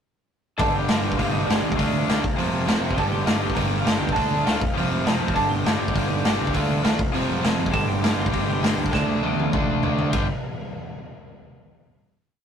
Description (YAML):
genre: punk rock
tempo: 201 BPM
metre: 4/4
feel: straight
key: unclear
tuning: A4 = 440 Hz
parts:
  - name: lightly driven lead guitar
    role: melody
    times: 0.6-10.3 s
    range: D4 to Bb5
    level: -30 LUFS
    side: right 1 dB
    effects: none
  - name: overdriven electric guitar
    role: riff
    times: 0.6-10.3 s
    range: F2 to D4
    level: -28 LUFS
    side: left 7 dB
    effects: none
  - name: overdriven electric guitar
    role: riff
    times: 0.6-10.3 s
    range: F2 to D4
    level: -26 LUFS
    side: right 6 dB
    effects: none
  - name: overdriven picked electric bass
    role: bass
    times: 0.6-10.3 s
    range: F1 to D3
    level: -29 LUFS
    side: equal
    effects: none
  - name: raw garage drum kit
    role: drums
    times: 0.6-10.2 s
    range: hi-hat, kick drum, ride cymbal, snare drum, toms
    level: -24 LUFS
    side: equal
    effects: none
room: moderate booth ambience, RT60 0.3 s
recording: rough rehearsal-room recording, tube saturation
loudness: -20 LUFS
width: side -8 dB against mid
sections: 0.6-10.1 verse; 10.1-11.3 final chord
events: drum fill 8.9-10.1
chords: 0.6 G5; 1.8 Dm; 2.2 F5; 3.0 Gm; 4.2 Dm; 4.6 F5; 5.4 G5; 6.5 Dm; 7.0 F5; 7.7 G5; 8.9 Dm; 10.1 G5